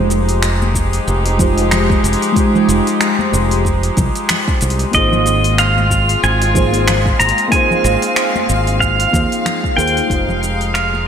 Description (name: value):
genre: sunset chillout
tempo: 93 BPM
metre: 4/4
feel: swing 57% on 16ths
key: Ab major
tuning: A4 = 440 Hz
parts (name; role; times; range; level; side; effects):
- mellow FM electric piano; accompaniment; 0.0-11.1 s; Ab3 to C5; -19 LUFS; moving between left 4 dB and right 3 dB; chorus, phaser, auto-pan, cassette tape, digital delay
- warm chamber string section; sustained chords; 0.0-11.1 s; F3 to F5; -21 LUFS; equal; none
- modern bright fingered electric bass; bass; 0.0-11.1 s; F1 to Eb2; -17 LUFS; equal; none
- deep house drum kit; drums; 0.1-11.0 s; finger snaps, hi-hat, shaker; -21 LUFS; equal; gated reverb
- bongos and congas; percussion; 0.1-11.0 s; none; -26 LUFS; left 2 dB; none
- electronic kick drum; drums; 0.7-10.2 s; none; -19 LUFS; equal; none
- pedal steel guitar; melody; 4.9-11.1 s; Eb5 to Bb5; -16 LUFS; right 1 dB; ping-pong delay
- twinkling granular texture; texture; 5.8-11.1 s; F5; -27 LUFS; equal; built-in reverb, ensemble chorus
room: moderate lush hall reverb, RT60 2.0 s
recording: bright 1980s-style digital production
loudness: -12 LUFS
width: side -8 dB against mid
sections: 0.0-11.1 A section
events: fade-out 8.4-11.1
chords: 0.0 Fm9; 4.9 Ab69; 10.1 Fm9